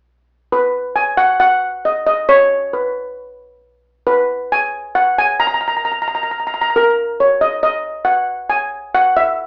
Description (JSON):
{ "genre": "calypso", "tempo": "135 BPM", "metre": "4/4", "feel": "straight", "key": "B major", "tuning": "A4 = 439 Hz", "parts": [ { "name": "steel pan", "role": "solo", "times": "0.5-9.5 s", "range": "A#4 to A#5", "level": "-16 LUFS", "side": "equal", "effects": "slapback echo" } ], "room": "wet studio reverb, RT60 0.6 s", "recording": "worn, warbling old tape, cassette tape, warbly pitch drift, small speaker sound, faint mains hum", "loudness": "-16 LUFS", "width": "mono", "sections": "0.3-7.4 A section; 7.4-9.5 B section", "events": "none", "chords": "none" }